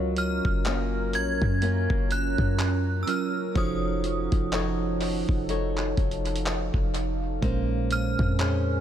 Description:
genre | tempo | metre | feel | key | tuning
contemporary R&B | 62 BPM | 4/4 | swing 58% on 16ths | unclear | A4 = 440 Hz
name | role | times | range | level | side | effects
mellow tine electric piano | accompaniment | 0.0-8.8 s | Bb2 to Eb5 | -32 LUFS | right 6 dB | none
deep dark ambient pad | sustained chords | 0.0-8.8 s | Db4 to Bb5 | -34 LUFS | right 2 dB | chorus, built-in reverb
flamenco guitar | arpeggios | 0.0-8.8 s | F3 to Db5 | -33 LUFS | left 5 dB | tape echo
warm 808-style bass | bass | 0.0-8.8 s | F1 to Gb2 | -28 LUFS | equal | none
synth chime | melody | 0.2-8.8 s | Eb6 to Ab6 | -32 LUFS | right 2 dB | ensemble chorus, tape echo
dusty soul sampler-style drum kit | drums | 0.2-8.7 s | handclaps, hi-hat, kick drum | -30 LUFS | equal | tape echo
glassy wavetable pluck | texture | 4.5-7.9 s | Db5 | -42 LUFS | left 9 dB | none
room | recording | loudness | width
light reverb | echo-heavy mix | -24 LUFS | side -10 dB against mid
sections
0.0-8.8 A section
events
none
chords
0.0 Gbmaj7; 3.6 F7b9b13; 7.4 Bbm9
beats
0.65 1.62 2.59 | 3.55 4.52 5.49 6.46 | 7.42 8.39

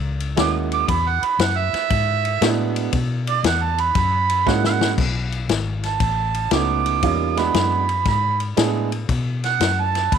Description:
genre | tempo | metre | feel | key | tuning
electric blues shuffle | 117 BPM | 4/4 | swing 67% on 8ths | unclear | A4 = 442 Hz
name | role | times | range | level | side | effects
vintage muted fingered electric bass | bass | 0.0-10.2 s | G#1 to B2 | -23 LUFS | left 2 dB | none
vintage drum kit | drums | 0.2-10.2 s | crash cymbal, kick drum, ride cymbal, snare drum | -24 LUFS | left 6 dB | none
mellow harmonica | second line | 0.4-10.2 s | D5 to D6 | -21 LUFS | right 8 dB | overdrive
clear upright piano | accompaniment | 0.4-8.9 s | G3 to G#4 | -23 LUFS | right 11 dB | none
room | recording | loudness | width
light reverb | 1960s-style stereo with parts hard left and right | -18 LUFS | side -7 dB against mid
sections
0.0-5.0 A section; 5.0-10.2 A section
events
harmonica solo 0.0-10.2; drum fill 4.5-5.0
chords
0.0 F#9; 0.9 E9; 2.9 E5; 4.0 F#9; 5.0 B9; 7.0 E9; 9.1 B7(no3)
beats
0.37 | 0.88 1.40 1.91 2.42 | 2.93 3.44 3.96 4.47 | 4.98 5.49 6.01 6.52 | 7.03 7.55 8.06 8.58 | 9.09 9.61 10.12

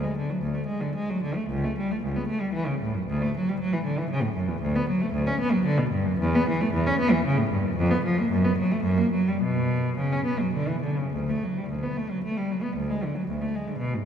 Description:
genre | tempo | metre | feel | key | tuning
classical, baroque-style suite movement for unaccompanied cello | 98-120 BPM | 3/4 | rubato | D major, B minor from 4.6 s | A4 = 440 Hz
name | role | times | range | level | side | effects
warm cello | solo | 0.0-14.1 s | C#2 to C#4 | -23 LUFS | equal | none
room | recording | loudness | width
wet cathedral reverb, RT60 6.0 s | minimal, uncompressed stereo recording | -23 LUFS | side -8 dB against mid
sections
0.0-11.1 A section; 11.1-14.1 A section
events
none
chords
none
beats
0.44 0.97 | 1.50 2.02 2.54 | 3.08 3.60 4.11 | 4.62 5.13 5.66 | 6.20 6.74 7.26 | 7.77 8.30 8.84 | 9.40 9.97 10.53 | 11.13 11.70 12.24 | 12.77 13.30 13.82

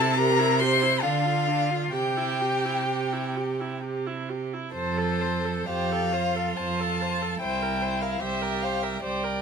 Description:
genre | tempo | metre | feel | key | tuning
classical, slow romantic movement for string quartet | 61-75 BPM | 3/4 | rubato | F major | A4 = 441 Hz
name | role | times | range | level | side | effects
dark violin | melody | 0.0-9.4 s | C5 to C6 | -28 LUFS | left 5 dB | none
rich violin | second line | 0.0-9.4 s | E4 to C5 | -30 LUFS | left 2 dB | none
warm viola | accompaniment | 0.0-9.4 s | D4 to C5 | -31 LUFS | right 4 dB | none
warm cello | bass | 0.0-9.4 s | C2 to D3 | -29 LUFS | right 5 dB | none
room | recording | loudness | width
moderate studio reverb, RT60 0.8 s | minimal, uncompressed stereo recording | -24 LUFS | side -6 dB against mid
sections
0.0-4.7 A section; 4.7-9.4 B section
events
none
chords
0.0 C; 1.0 Dm; 1.9 C; 4.7 F; 7.4 C7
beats
0.19 1.02 | 1.94 2.88 3.83 | 4.74 5.68 6.57 | 7.41 8.21 9.03

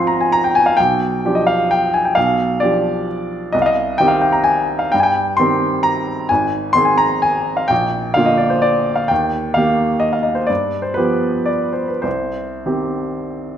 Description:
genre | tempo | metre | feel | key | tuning
classical, piano waltz | 99-139 BPM | 3/4 | rubato | C minor | A4 = 440 Hz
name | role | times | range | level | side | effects
clear baby grand piano | solo | 0.0-13.6 s | Ab1 to C6 | -14 LUFS | equal | none
room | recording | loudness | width
wet recital hall reverb, RT60 1.5 s | none | -14 LUFS | side -9 dB against mid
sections
0.0-13.6 A section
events
none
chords
0.0 Fm/Ab; 0.8 G7/B; 3.5 Cm; 6.3 Ab; 7.7 Bb; 9.1 Eb; 10.5 G7; 12.1 Cm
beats
0.32 | 0.78 1.24 1.72 | 2.17 2.61 3.07 | 3.54 3.99 4.47 | 4.93 5.38 5.85 | 6.30 6.75 7.24 | 7.71 8.17 8.64 | 9.10 9.55 10.03 | 10.50 10.97 11.49 | 12.05 12.65 13.25

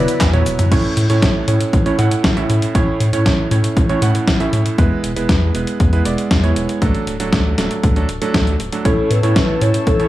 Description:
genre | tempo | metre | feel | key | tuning
italo disco | 118 BPM | 4/4 | straight | A major | A4 = 439 Hz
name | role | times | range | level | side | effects
soft octave-layered synth lead | melody | 0.0-0.2, 8.9-10.1 s | A4 to C#5 | -20 LUFS | left 3 dB | chorus, phaser, vintage 12-bit sampler grit, tape echo
lush unison pad | sustained chords | 0.0-0.7, 8.9-10.1 s | B4 to E6 | -30 LUFS | left 1 dB | chorus
clear electric grand piano | stabs | 0.0-10.1 s | A2 to F#5 | -19 LUFS | right 3 dB | none
round analog bass | bass | 0.0-10.1 s | D1 to A2 | -19 LUFS | equal | none
clean 12-bit digital drum machine | drums | 0.1-10.1 s | cabasa, crash cymbal, handclaps, hi-hat, snare drum, toms | -21 LUFS | left 1 dB | none
electronic kick drum | drums | 0.2-10.0 s | none | -17 LUFS | equal | none
room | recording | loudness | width
light reverb | small room ambience | -13 LUFS | side -15 dB against mid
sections
0.7-10.1 A section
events
drum fill 0.0-0.7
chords
0.0 Esus2; 0.7 A; 4.8 E; 6.8 D; 8.9 A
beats
0.21 | 0.72 1.23 1.73 2.24 | 2.75 3.26 3.77 4.28 | 4.78 5.29 5.80 6.31 | 6.82 7.33 7.83 8.34 | 8.85 9.36 9.87

